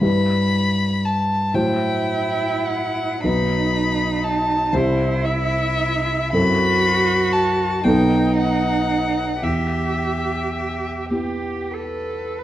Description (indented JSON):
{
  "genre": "classical, slow romantic movement for piano trio",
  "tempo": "38 BPM (dotted quarters)",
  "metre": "6/8",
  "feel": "uneven beats, rubato",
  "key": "E minor",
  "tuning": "A4 = 441 Hz",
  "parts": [
    { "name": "rich violin", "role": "melody", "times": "0.0-12.4 s", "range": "G4 to B5", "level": "-23 LUFS", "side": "left 3 dB", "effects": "none" },
    { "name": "dark grand piano", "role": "accompaniment", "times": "0.0-12.4 s", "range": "B1 to C5", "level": "-21 LUFS", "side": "equal", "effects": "none" },
    { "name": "clear cello", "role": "second line", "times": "1.6-12.4 s", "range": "D#4 to B4", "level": "-24 LUFS", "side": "right 4 dB", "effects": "none" }
  ],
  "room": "moderate recital hall reverb, RT60 1.3 s",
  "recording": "worn, warbling old tape, cassette tape, warbly pitch drift",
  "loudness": "-18 LUFS",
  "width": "side -13 dB against mid",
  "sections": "0.0-12.4 A section",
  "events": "none",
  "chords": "0.0 Em/G; 1.5 F#m7b5/A; 3.2 B; 4.7 C; 6.3 F#m7b5; 7.9 B7; 9.4 Em"
}